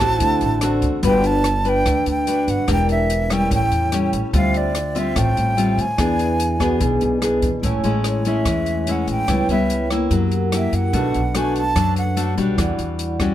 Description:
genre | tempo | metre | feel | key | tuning
bossa nova | 146 BPM | 4/4 | straight | A major | A4 = 440 Hz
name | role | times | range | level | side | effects
breathy jazz flute | melody | 0.0-12.4 s | C#5 to A5 | -23 LUFS | right 2 dB | none
growling trombone | second line | 0.0-0.9, 6.2-7.6 s | D4 to G#4 | -25 LUFS | right 4 dB | none
nylon-string guitar | accompaniment | 0.0-13.3 s | A2 to B4 | -22 LUFS | left 3 dB | none
vibraphone with soft mallets | accompaniment | 0.0-13.3 s | A3 to G#5 | -26 LUFS | right 1 dB | none
upright bass | bass | 0.0-13.3 s | E1 to F#2 | -22 LUFS | equal | none
open jazz drum kit | drums | 0.0-13.3 s | hi-hat, kick drum, rim click | -26 LUFS | equal | none
room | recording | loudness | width
little or no reverb | close, detailed microphones | -17 LUFS | side -12 dB against mid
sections
0.0-7.6 A section; 7.6-13.3 B section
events
flute solo 7.6-13.3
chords
0.2 D7; 1.0 Gmaj7; 2.7 Em7b5; 3.5 A7; 4.3 Dm11; 6.0 E7; 7.6 Amaj7; 9.3 C#m7b5; 10.1 F#7b9; 10.9 Bm7; 12.6 Em9

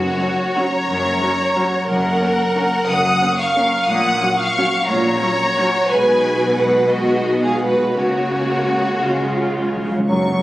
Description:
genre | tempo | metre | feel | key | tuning
classical, orchestral ballroom waltz | 160-194 BPM | 3/4 | rubato | F# major | A4 = 440 Hz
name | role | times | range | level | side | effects
rich symphonic violin section | melody | 0.0-10.4 s | C#5 to D#6 | -24 LUFS | left 1 dB | none
warm symphonic violin section | second line | 0.0-9.9 s | F#4 to F#5 | -18 LUFS | equal | none
concert harp | arpeggios | 0.0-10.4 s | F#2 to A#5 | -28 LUFS | left 2 dB | none
rich symphonic cello section | bass | 0.0-10.4 s | F#2 to C#3 | -24 LUFS | right 1 dB | none
warm symphonic double bass section | bass | 0.0-10.4 s | F#1 to C#2 | -28 LUFS | right 1 dB | none
timpani | percussion | 0.0-0.4, 9.0-10.4 s | F#2 to C#3 | -25 LUFS | equal | none
warm symphonic viola section | accompaniment | 0.2-9.9 s | F#3 to F#4 | -23 LUFS | equal | none
mellow hollow large flute ensemble | second line | 10.1-10.4 s | A#5 | -28 LUFS | equal | none
warm bassoon | accompaniment | 10.1-10.4 s | F#3 | -21 LUFS | right 1 dB | none
room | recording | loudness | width
moderate concert hall reverb, RT60 1.9 s | recorded on a phone in the room, club reverb | -15 LUFS | side -16 dB against mid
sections
0.0-10.1 A section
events
timpani fill 9.0-10.1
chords
0.0 F#; 3.9 F#/A#; 5.9 G#m7/B; 8.0 F#/C#; 9.0 C#

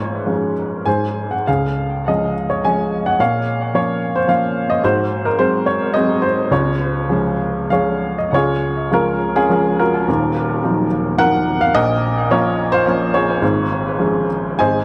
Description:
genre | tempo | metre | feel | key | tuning
classical, lyrical solo piano | 94-112 BPM | 3/4 | rubato | Db major | A4 = 440 Hz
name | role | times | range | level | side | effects
warm upright piano | solo | 0.0-14.8 s | Eb1 to Ab5 | -18 LUFS | equal | tape echo
room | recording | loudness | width
moderate spring reverb, RT60 1.6 s, small room reverb | echo-heavy mix, cassette tape | -18 LUFS | mono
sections
0.0-8.3 A section; 8.3-14.8 A section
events
none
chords
0.0 Db/Ab; 0.9 Ab; 1.5 Db; 3.2 Bbm; 4.8 Ab7; 6.5 Db; 10.1 Ebmadd9; 11.7 Bbm; 13.4 Db/Ab

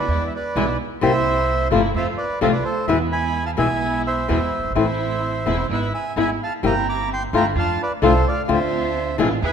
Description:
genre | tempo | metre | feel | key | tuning
tango | 129 BPM | 4/4 | rubato | unclear | A4 = 437 Hz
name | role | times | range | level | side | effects
bandoneon | melody | 0.0-9.5 s | A4 to D6 | -23 LUFS | right 2 dB | none
dark chamber string section | stabs | 0.0-9.5 s | G#3 to G#4 | -27 LUFS | right 2 dB | none
upright bass | bass | 0.0-9.5 s | E1 to F2 | -25 LUFS | right 2 dB | none
flamenco guitar | accompaniment | 0.6-9.3 s | B2 to G4 | -21 LUFS | left 5 dB | none
room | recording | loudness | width
moderate scoring stage reverb, RT60 1.9 s | minimal, uncompressed stereo recording | -18 LUFS | side -7 dB against mid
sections
0.0-9.5 A section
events
none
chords
0.1 E; 1.0 C7; 1.9 F; 2.9 E; 4.8 Am; 5.7 E/G#; 6.6 C7/G; 7.6 F6; 8.5 Dm7

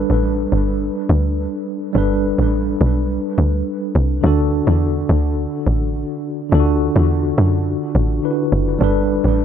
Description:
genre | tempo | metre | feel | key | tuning
afrobeats | 105 BPM | 4/4 | straight | G major | A4 = 439 Hz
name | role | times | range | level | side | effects
tine electric piano | accompaniment | 0.0-9.4 s | D3 to B4 | -19 LUFS | equal | medium stereo tremolo, dub echo
woody log drum bass | bass | 0.0-9.4 s | F#1 to F#2 | -17 LUFS | equal | none
room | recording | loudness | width
little or no reverb | echo-heavy mix | -15 LUFS | side -8 dB against mid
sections
0.0-9.4 A section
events
none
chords
0.0 Gadd9; 4.2 D; 8.8 Gadd9

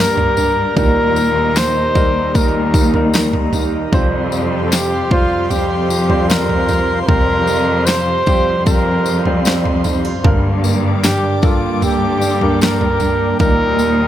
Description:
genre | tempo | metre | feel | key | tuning
pop ballad | 76 BPM | 4/4 | straight | unclear | A4 = 440 Hz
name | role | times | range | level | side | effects
mellow flugelhorn | melody | 0.0-14.1 s | F4 to C5 | -18 LUFS | equal | none
warm baby grand piano | accompaniment | 0.0-14.1 s | G2 to C5 | -22 LUFS | left 2 dB | none
airy breathy pad | sustained chords | 0.0-14.1 s | Bb3 to Eb6 | -23 LUFS | right 4 dB | chorus
fingerpicked plugged-in steel-string acoustic guitar | arpeggios | 0.0-14.1 s | G2 to G4 | -26 LUFS | right 5 dB | none
dark symphonic cello section | bass | 0.0-14.1 s | Eb2 to G2 | -19 LUFS | left 1 dB | none
pop drum kit | drums | 0.0-13.6 s | kick drum, snare drum, toms | -17 LUFS | equal | none
tambourine | percussion | 0.4-14.0 s | none | -27 LUFS | left 7 dB | none
room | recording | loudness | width
small room ambience | none | -13 LUFS | side -11 dB against mid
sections
0.0-14.1 A section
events
none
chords
0.0 Gm; 0.8 Eb; 3.9 Fsus2; 10.2 Gm; 13.4 Eb

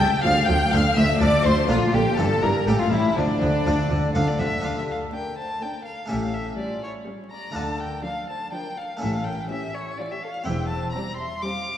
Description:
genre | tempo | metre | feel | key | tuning
classical, baroque-style concerto movement with solo episodes | 123 BPM | 3/4 | straight | D minor | A4 = 441 Hz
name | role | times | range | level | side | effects
rich violin | melody | 0.0-11.8 s | D4 to D6 | -28 LUFS | left 1 dB | none
warm chamber violin section | melody | 0.0-11.8 s | E4 to G6 | -32 LUFS | left 4 dB | none
dark chamber violin section | second line | 0.0-11.8 s | C4 to G5 | -28 LUFS | left 2 dB | none
harpsichord | accompaniment | 0.0-11.8 s | C#2 to G4 | -28 LUFS | left 1 dB | none
rich studio viola section | accompaniment | 0.0-11.8 s | D3 to A3 | -32 LUFS | right 1 dB | none
warm chamber cello section | bass | 0.0-10.9 s | C#2 to D3 | -26 LUFS | equal | none
warm chamber double bass section | bass | 0.0-10.9 s | E1 to D2 | -27 LUFS | right 1 dB | none
room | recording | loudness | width
wet concert hall reverb, RT60 2.4 s | heard from further back in the room, vinyl crackle | -21 LUFS | side -10 dB against mid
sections
0.0-4.6 A section; 4.6-11.8 B section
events
none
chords
0.2 Dm; 1.7 Bb; 2.2 Edim/G; 2.7 A7; 3.2 Dm; 6.1 A7; 7.6 Dm; 9.0 A; 10.5 C/E

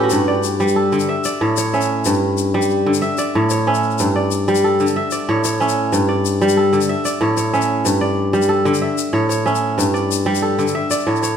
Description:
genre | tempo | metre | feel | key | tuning
west african traditional, West African string and xylophone music | 124 BPM (dotted quarters) | 12/8 | straight | G lydian | A4 = 441 Hz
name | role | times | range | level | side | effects
kora | arpeggios | 0.0-11.4 s | G2 to E5 | -15 LUFS | equal | none
tube shaker | percussion | 0.1-11.3 s | none | -27 LUFS | left 10 dB | none
room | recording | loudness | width
wet recital hall reverb, RT60 1.6 s | none | -15 LUFS | side -8 dB against mid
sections
0.0-11.4 A section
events
none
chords
0.1 G5; 1.1 A; 2.1 G5; 3.0 A; 4.0 G5; 5.0 A; 5.9 G5; 6.9 A; 7.9 G5; 8.8 A; 9.8 G5; 10.7 A

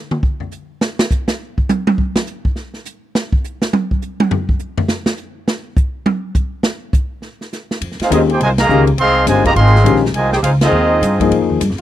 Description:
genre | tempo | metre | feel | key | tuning
jazz, big band swing | 206 BPM | 4/4 | swing 62% on 8ths | F minor | A4 = 440 Hz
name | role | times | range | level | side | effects
swinging big-band drum kit | drums | 0.1-11.8 s | hi-hat, kick drum, ride cymbal, snare drum, toms | -17 LUFS | right 1 dB | none
upright bass | bass | 7.8-11.8 s | G1 to Ab2 | -15 LUFS | equal | none
mellow trumpet section | melody | 8.0-11.5 s | C4 to C6 | -15 LUFS | right 1 dB | none
muted trombone section | second line | 8.0-11.5 s | C3 to G4 | -20 LUFS | right 3 dB | none
warm grand piano | accompaniment | 8.1-11.6 s | Eb3 to C5 | -16 LUFS | left 7 dB | none
clear trombone section | sustained chords | 8.1-11.8 s | Eb3 to F4 | -21 LUFS | left 1 dB | none
room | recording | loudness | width
little or no reverb | dry, close 1970s-style studio recording | -13 LUFS | side -12 dB against mid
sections
0.0-7.8 A section; 7.8-11.8 B section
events
drum solo 0.0-7.8; band accent 8.5, 10.6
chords
0.0 N.C.; 7.8 Fm7

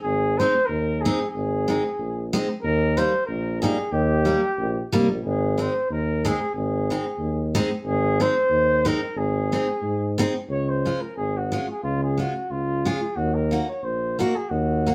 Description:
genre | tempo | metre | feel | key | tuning
alpine folk, alpine dance band | 91 BPM | 2/4 | swing 55% on 8ths | Ab major, Db major from 10.5 s | A4 = 438 Hz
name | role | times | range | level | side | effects
warm flugelhorn | melody | 0.0-14.9 s | F4 to Db5 | -27 LUFS | equal | none
warm tuba | bass | 0.0-14.9 s | Ab1 to Ab2 | -27 LUFS | equal | none
picked steel-string acoustic guitar | accompaniment | 0.4-14.9 s | G3 to Gb4 | -27 LUFS | equal | none
room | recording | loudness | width
moderate studio reverb, RT60 0.6 s | band playing live in one room | -24 LUFS | mono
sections
0.0-10.5 A section; 10.5-14.9 B section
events
none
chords
0.0 Ab; 2.6 Eb; 5.2 Ab; 10.5 Db; 13.2 Ebm

